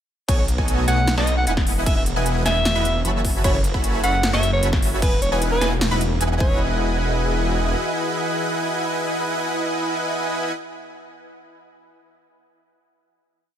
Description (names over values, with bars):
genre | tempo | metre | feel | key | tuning
future bass | 152 BPM | 4/4 | half-time | E major | A4 = 440 Hz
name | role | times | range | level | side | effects
breathy alto saxophone | melody | 0.3-6.6 s | B4 to F#5 | -25 LUFS | right 1 dB | sidechain pumping, ping-pong delay
airy breathy pad | sustained chords | 0.3-10.5 s | D#3 to D#5 | -32 LUFS | left 3 dB | chorus, sidechain pumping
wide unison pluck | arpeggios | 0.3-11.2 s | G#5 to C#6 | -32 LUFS | right 1 dB | sidechain pumping
dense compressed supersaw | riff | 0.3-10.5 s | B3 to C#6 | -24 LUFS | right 1 dB | sidechain pumping
wide detuned saw bass | bass | 0.3-7.7 s | E1 to B1 | -22 LUFS | equal | chorus, sidechain pumping
big-room dance drum kit | drums | 0.3-6.3 s | crash cymbal, hi-hat, snare drum | -26 LUFS | equal | none
electronic kick drum | drums | 0.3-6.5 s | none | -21 LUFS | equal | none
room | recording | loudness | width
little or no reverb | none | -18 LUFS | side -10 dB against mid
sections
0.3-6.6 drop; 6.6-9.8 final hit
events
drop 0.3-6.6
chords
0.3 Emaj9; 3.2 F#m11; 5.0 Emaj9